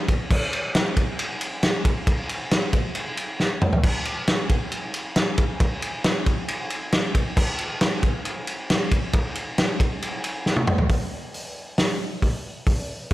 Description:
rock; 136 BPM; 4/4; straight
loose indie drum kit; drums; 0.1-13.1 s; crash cymbal, hi-hat, kick drum, ride cymbal, snare drum, toms; -21 LUFS; equal
light reverb; -21 LUFS; side -16 dB against mid
0.0-10.9 A section; 10.9-13.1 B section
drum fill 3.4-3.8, 10.5-10.9; half time 10.9-13.1

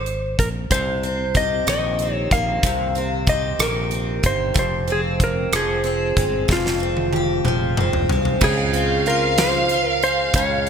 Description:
six-eight pop ballad; 62 BPM (dotted quarters); 6/8; straight; F minor; A4 = 439 Hz
clean lap steel guitar; melody; 0.0-10.7 s; F4 to F5; -23 LUFS; left 1 dB
fretless electric bass; bass; 0.0-10.7 s; F1 to Db2; -26 LUFS; equal
huge arena drum kit; drums; 0.1-10.7 s; crash cymbal, hi-hat, kick drum, rim click, snare drum, toms; -23 LUFS; equal; gated reverb
picked steel-string acoustic guitar; accompaniment; 0.7-10.7 s; F2 to G4; -24 LUFS; equal; double-tracked left and right
warm studio violin section; second line; 8.4-10.7 s; F5; -22 LUFS; right 2 dB; ping-pong delay
light reverb; bright 1980s-style digital production; -18 LUFS; side -7 dB against mid
0.0-8.4 A section; 8.4-10.7 B section
drum fill 6.5-8.4
0.0 Bb7(no3); 0.7 Cm7; 4.6 Fmadd9; 8.4 Dbmaj7

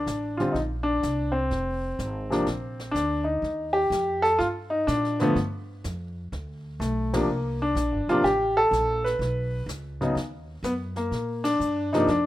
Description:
jazz piano trio; 125 BPM; 4/4; swing 68% on 8ths; Bb major; A4 = 440 Hz
warm grand piano; melody; 0.0-12.3 s; C3 to Cb5; -24 LUFS; equal; plate reverb
upright bass; bass; 0.0-12.3 s; Eb1 to Bb2; -32 LUFS; right 1 dB
jazz brush drum kit; drums; 0.1-12.3 s; brushed snare drum, hi-hat, ride cymbal, snare drum; -42 LUFS; equal
moderate studio reverb, RT60 0.6 s; rough home demo mix; -23 LUFS; side -15 dB against mid
0.0-12.3 A section
band accent 7.0, 11.4
0.0 Bbmaj9; 1.5 Fm; 2.5 Bb; 3.4 Ebmaj7; 5.4 G7; 7.3 C7(no3); 9.2 Badd9; 11.1 Bb

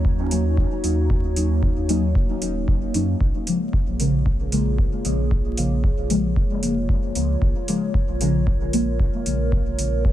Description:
dub techno; 114 BPM; 4/4; swing 54% on 16ths; Bb minor; A4 = 442 Hz
dark analog pad; sustained chords; 0.0-10.1 s; Bb3 to Db5; -29 LUFS; right 2 dB; chorus, phaser, sidechain pumping
warm sub bass; bass; 0.0-10.1 s; Eb1 to Gb2; -24 LUFS; equal; sidechain pumping
electronic kick drum; drums; 0.0-10.1 s; -22 LUFS; equal
deep mellow chord stab; stabs; 0.3-10.0 s; Db3 to Eb4; -25 LUFS; left 1 dB; chorus, phaser, sidechain pumping, dub echo
electronic hi-hat; drums; 0.3-9.9 s; -29 LUFS; right 1 dB
little or no reverb; vinyl crackle; -19 LUFS; side -12 dB against mid
0.0-10.1 A section
0.0 Ebm7; 3.2 Bbm7

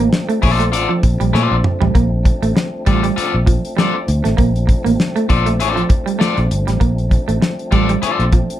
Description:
funk; 99 BPM; 4/4; swing 56% on 16ths; A4 = 441 Hz
tonewheel organ; sustained chords; 0.0-8.6 s; F3 to D4; -26 LUFS; left 1 dB; fast rotary speaker, overdrive
electric guitar at the edge of break-up; riff; 0.0-8.5 s; F3 to Bb3; -20 LUFS; right 4 dB
vintage muted fingered electric bass; bass; 0.0-8.4 s; G1 to Bb2; -17 LUFS; equal
damped 70s drum kit; drums; 0.1-8.6 s; hi-hat, kick drum, snare drum, toms; -16 LUFS; equal
electric guitar at the edge of break-up; accompaniment; 0.4-8.2 s; F4 to D5; -19 LUFS; left 5 dB
light reverb; dark, warm production, faint mains hum; -13 LUFS; side -12 dB against mid
0.0-8.6 A section
drum fill 1.3-1.9
0.0 Bbmaj7

